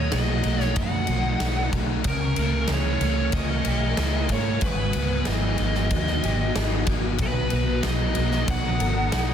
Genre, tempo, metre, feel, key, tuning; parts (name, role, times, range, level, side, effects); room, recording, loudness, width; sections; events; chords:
rock, shoegaze and dream pop; 94 BPM; 4/4; straight; A4 = 441 Hz
biting lead guitar; melody; 0.0-9.3 s; A#4 to F#5; -29 LUFS; equal; overdrive, analog delay
ensemble organ-string; sustained chords; 0.0-9.3 s; F#4 to D#6; -34 LUFS; equal; phaser, ensemble chorus
clean electric guitar; riff; 0.0-9.3 s; G#2 to A#4; -30 LUFS; right 9 dB; reverse reverb
crunchy overdriven guitar; riff; 0.0-9.3 s; G#2 to A#4; -31 LUFS; left 10 dB; ensemble chorus
vintage muted fingered electric bass; bass; 0.0-9.3 s; G#1 to G#2; -26 LUFS; equal
huge arena drum kit; drums; 0.1-9.3 s; kick drum, ride cymbal, snare drum; -27 LUFS; equal
small room ambience; dense, heavily limited modern master; -21 LUFS; side -8 dB against mid
0.0-9.3 A section
0.0 G#m7 (rootless); 2.1 C#6; 4.6 G#m7; 7.2 Bmaj7